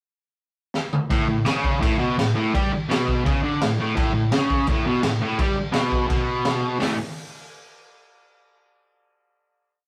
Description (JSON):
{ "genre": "garage rock duo or trio", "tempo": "168 BPM", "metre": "4/4", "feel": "straight", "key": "A major", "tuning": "A4 = 440 Hz", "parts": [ { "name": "raw garage drum kit", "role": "drums", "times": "0.7-6.9 s", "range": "crash cymbal, hi-hat, kick drum, snare drum, toms", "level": "-26 LUFS", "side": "equal", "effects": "none" }, { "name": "fuzz guitar", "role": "riff", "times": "1.1-7.0 s", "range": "A2 to A3", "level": "-24 LUFS", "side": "equal", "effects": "distortion" } ], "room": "moderate stone room reverb, RT60 1.1 s", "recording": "rough rehearsal-room recording", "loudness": "-22 LUFS", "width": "mono", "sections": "0.0-1.1 pickup bar; 1.1-6.8 riff; 6.8-8.2 final chord", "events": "drum fill 0.7-1.1", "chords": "0.0 N.C.; 1.1 A; 6.8 A5" }